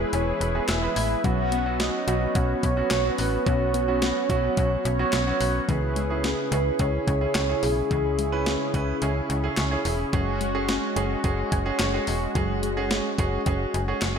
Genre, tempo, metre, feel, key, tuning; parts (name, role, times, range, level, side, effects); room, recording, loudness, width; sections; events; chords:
synth-pop; 108 BPM; 4/4; straight; C# minor; A4 = 440 Hz
clear grand piano; accompaniment; 0.0-14.2 s; F#3 to B4; -29 LUFS; right 3 dB; shimmer reverb
brassy analog pad; sustained chords; 0.0-14.2 s; C#3 to B4; -30 LUFS; left 1 dB; chorus, shimmer reverb
soft round pluck; arpeggios; 0.0-14.2 s; E3 to G#6; -35 LUFS; left 4 dB; chorus, diffuse ambient delay, shimmer reverb
slap-like FM bass; bass; 0.0-14.2 s; E1 to C#2; -27 LUFS; equal
soft octave-layered synth lead; melody; 0.1-9.3 s; G#4 to F#5; -28 LUFS; right 2 dB; chorus, phaser, diffuse ambient delay, shimmer reverb
clean 12-bit digital drum machine; drums; 0.1-14.1 s; handclaps, hi-hat, kick drum, snare drum; -28 LUFS; equal
moderate lush hall reverb, RT60 1.7 s; dreamy mix soaked in reverb; -22 LUFS; side -7 dB against mid
0.0-5.7 A section; 5.7-14.2 B section
0.0 E; 1.2 Bsus2; 5.7 C#m; 10.1 F#sus2